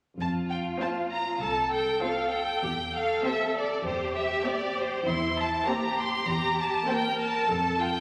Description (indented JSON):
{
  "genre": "quick classical-period movement for string orchestra",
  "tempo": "99 BPM",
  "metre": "4/4",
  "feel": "straight",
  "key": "F major",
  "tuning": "A4 = 440 Hz",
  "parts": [
    { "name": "rich chamber violin section", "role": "melody", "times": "0.2-8.0 s", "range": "C5 to C6", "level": "-31 LUFS", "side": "equal", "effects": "none" },
    { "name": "rich symphonic cello section", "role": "bass", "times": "0.2-7.9 s", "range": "E4 to Bb4", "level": "-33 LUFS", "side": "equal", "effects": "none" },
    { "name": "rich symphonic double bass section", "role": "bass", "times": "0.2-8.0 s", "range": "C2 to F2", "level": "-38 LUFS", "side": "equal", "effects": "none" },
    { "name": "rich symphonic violin section", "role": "second line", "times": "0.8-7.3 s", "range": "F4 to C5", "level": "-41 LUFS", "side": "equal", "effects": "none" },
    { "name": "warm symphonic viola section", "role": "accompaniment", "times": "0.8-7.3 s", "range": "Bb3 to C4", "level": "-39 LUFS", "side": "equal", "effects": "none" }
  ],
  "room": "wet concert hall reverb, RT60 1.9 s",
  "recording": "vinyl crackle",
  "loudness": "-28 LUFS",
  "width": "mono",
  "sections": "0.2-8.0 A section",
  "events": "none",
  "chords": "0.2 F; 2.6 C/E; 5.1 C7/E; 7.5 F"
}